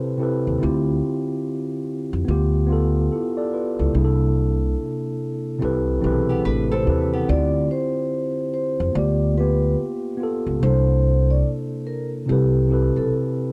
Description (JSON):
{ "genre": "hip hop", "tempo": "72 BPM", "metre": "4/4", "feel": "swing 62% on 16ths", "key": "D dorian", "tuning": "A4 = 440 Hz", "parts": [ { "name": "mellow tine electric piano", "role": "accompaniment", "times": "0.0-13.5 s", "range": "C3 to D5", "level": "-25 LUFS", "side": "equal", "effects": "cassette tape" }, { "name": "upright bass", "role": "bass", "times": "0.5-13.1 s", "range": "A1 to F2", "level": "-23 LUFS", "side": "equal", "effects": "none" }, { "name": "nylon-string guitar", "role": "second line", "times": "6.3-7.5 s", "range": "B3 to B4", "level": "-31 LUFS", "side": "equal", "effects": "none" }, { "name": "vibraphone with soft mallets", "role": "melody", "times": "7.3-13.1 s", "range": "G4 to D5", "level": "-28 LUFS", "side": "equal", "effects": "none" } ], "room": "light reverb", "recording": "dark, warm production", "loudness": "-22 LUFS", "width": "mono", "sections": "0.0-13.5 A section", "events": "none", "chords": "0.0 Am9; 0.6 Dm11; 2.3 G9/D; 3.9 C13; 5.6 Am9; 7.3 Dm11; 8.9 G9/D; 10.6 C13; 12.3 Am9" }